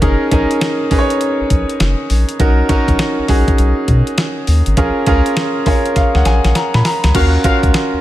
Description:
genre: R&B, new jack swing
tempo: 101 BPM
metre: 4/4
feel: swing 64% on 16ths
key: Eb minor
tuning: A4 = 440 Hz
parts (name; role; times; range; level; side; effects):
- clear grand piano; accompaniment; 0.0-8.0 s; Db4 to Cb6; -16 LUFS; right 1 dB; none
- round analog bass; bass; 0.0-8.0 s; Gb1 to B2; -14 LUFS; equal; none
- clean 12-bit digital drum machine; drums; 0.0-7.9 s; crash cymbal, hi-hat, kick drum, snare drum; -17 LUFS; equal; none
- warm horn section; stabs; 7.1-7.6 s; Gb4 to F5; -21 LUFS; left 6 dB; ping-pong delay
room: light reverb, digital ambience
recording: none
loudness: -12 LUFS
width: side -14 dB against mid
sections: 0.0-7.1 A section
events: grand piano fill 5.4-7.1; drum fill 6.0-7.1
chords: 0.0 Gb6; 2.4 Bmaj7; 4.8 Bbm7; 7.1 Ebm9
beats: | 0.02 0.61 1.21 1.80 | 2.40 2.99 3.58 4.18 | 4.77 5.37 5.96 6.55 | 7.15 7.74

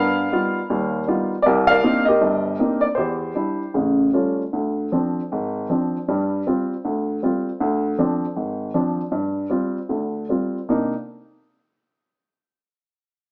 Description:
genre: solo jazz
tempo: 157 BPM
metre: 4/4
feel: swing 65% on 8ths, rubato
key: C minor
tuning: A4 = 440 Hz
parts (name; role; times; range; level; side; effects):
- warm baby grand piano; solo; 0.0-10.9 s; G1 to F5; -22 LUFS; equal; none
room: moderate studio reverb, RT60 0.9 s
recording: band playing live in one room, small speaker sound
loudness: -22 LUFS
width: mono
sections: 0.0-4.5 A section; 4.5-10.7 B section; 10.7-12.2 C section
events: none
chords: 0.0 G7alt; 1.5 Cm9; 3.0 Cadd9/E; 3.7 A7b13; 4.5 Dm7b5; 6.1 G7sus4; 7.6 Dm7b5; 9.1 G7sus4; 10.7 Cm9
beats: 0.32 0.70 1.08 | 1.46 1.84 2.22 2.60 | 2.98 3.36 3.75 4.14 | 4.54 4.93 5.32 5.70 | 6.09 6.47 6.85 7.23 | 7.60 7.98 8.36 8.74 | 9.12 9.51 9.90 10.30 | 10.70

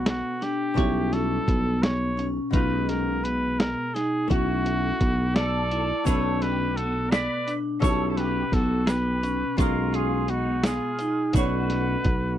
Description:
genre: progressive instrumental, band music in an uneven meter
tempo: 170 BPM (eighths)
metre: 5/8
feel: straight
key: B minor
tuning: A4 = 442 Hz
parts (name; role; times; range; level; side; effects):
- breathy trumpet; melody; 0.0-12.4 s; F#4 to D5; -29 LUFS; equal; none
- archtop guitar, miked and amplified; accompaniment; 0.0-12.4 s; B2 to E#5; -33 LUFS; equal; double-tracked left and right
- vibraphone with medium hard mallets; arpeggios; 0.0-12.4 s; B3 to E4; -28 LUFS; left 1 dB; none
- sustaining fretless electric bass; bass; 0.0-12.4 s; B1; -27 LUFS; equal; none
- lo-fi sampler-style drum kit; drums; 0.1-12.2 s; hi-hat, kick drum, snare drum; -26 LUFS; equal; none
- electric guitar through a small old amp; second line; 5.4-12.4 s; D#4 to B4; -34 LUFS; right 1 dB; ensemble chorus
- tube shaker; percussion; 6.1-11.7 s; none; -45 LUFS; right 14 dB; none
room: light reverb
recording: dry, close 1970s-style studio recording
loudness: -22 LUFS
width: side -11 dB against mid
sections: 0.0-12.4 A section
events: none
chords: 0.0 Bm9; 0.8 A7/B; 2.5 C#7/B; 4.3 F#m7/B; 6.1 Bm9; 7.8 A9/B; 9.6 C#7/B; 11.4 Bm9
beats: 0.07 0.42 | 0.77 1.13 1.48 1.83 2.19 | 2.54 2.89 3.25 3.60 3.95 | 4.30 4.66 5.01 5.36 5.71 | 6.07 6.42 6.77 7.12 7.48 | 7.83 8.18 8.53 8.88 9.24 | 9.59 9.94 10.29 10.65 11.00 | 11.35 11.70 12.06

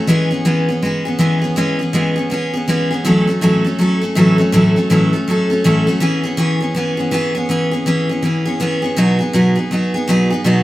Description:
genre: rock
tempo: 162 BPM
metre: 4/4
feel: swing 62% on 8ths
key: E major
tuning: A4 = 435 Hz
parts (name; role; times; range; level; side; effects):
- picked steel-string acoustic guitar; solo; 0.0-10.6 s; A2 to A4; -13 LUFS; equal; none
room: moderate stone room reverb, RT60 1.3 s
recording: band playing live in one room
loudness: -13 LUFS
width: side -16 dB against mid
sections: 0.0-10.6 A section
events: none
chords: 0.1 E6; 3.0 A6; 6.0 E6; 9.0 B6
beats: | 0.09 0.46 0.83 1.20 | 1.57 1.94 2.31 2.68 | 3.05 3.42 3.79 4.16 | 4.53 4.90 5.27 5.64 | 6.01 6.38 6.75 7.12 | 7.49 7.86 8.23 8.60 | 8.97 9.34 9.71 10.08 | 10.45

